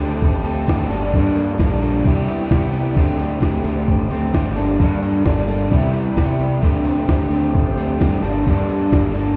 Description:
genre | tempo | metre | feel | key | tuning
indie rock | 131 BPM | 4/4 | straight | unclear | A4 = 440 Hz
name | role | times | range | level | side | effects
string machine, violins | sustained chords | 0.0-9.4 s | Bb3 to E6 | -38 LUFS | equal | none
crunchy overdriven guitar | riff | 0.0-9.4 s | G2 to Bb4 | -25 LUFS | equal | ensemble chorus, slapback echo
electric guitar through a small old amp | riff | 0.0-9.4 s | G2 to A4 | -26 LUFS | equal | none
growling fingered electric bass | bass | 0.0-9.3 s | G1 to G2 | -24 LUFS | equal | overdrive
breakbeat sampler-style drum kit | drums | 0.2-9.2 s | crash cymbal, hi-hat, kick drum, snare drum | -20 LUFS | equal | none
tambourine | percussion | 0.2-9.3 s | none | barely audible | none | none
room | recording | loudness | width
light reverb, digital ambience | heard muffled through a wall, stone room reverb, EQ | -18 LUFS | mono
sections
0.0-9.4 A section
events
none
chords
0.0 D7sus4; 0.9 Gmadd9; 2.0 Cmaj7; 3.0 D7sus4; 4.6 Gmadd9; 5.7 Cmaj7; 6.6 D7sus4; 8.2 Gmadd9

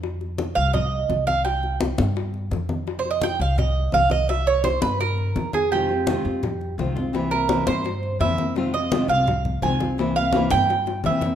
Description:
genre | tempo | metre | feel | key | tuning
latin, Cuban son and guajira | 169 BPM | 4/4 | straight | F minor | A4 = 440 Hz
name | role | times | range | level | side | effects
upright bass | bass | 0.0-11.3 s | C2 to G2 | -26 LUFS | equal | none
bongos | percussion | 0.0-11.3 s | none | -32 LUFS | left 8 dB | none
congas | percussion | 0.0-11.3 s | none | -29 LUFS | left 3 dB | none
Cuban tres | arpeggios | 0.6-11.3 s | G4 to Ab5 | -22 LUFS | right 4 dB | none
nylon-string guitar | accompaniment | 5.7-11.3 s | C3 to F4 | -25 LUFS | left 2 dB | none
room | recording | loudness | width
moderate large studio reverb, RT60 1.3 s | minimal, uncompressed stereo recording | -20 LUFS | side -9 dB against mid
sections
0.0-11.3 A section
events
Cuban tres solo 0.0-11.3; drum fill 10.9-11.3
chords
0.0 F5; 1.4 C5; 2.9 F5; 4.3 C5; 5.7 Fm7; 7.1 C7; 8.6 Fm7; 10.0 C7

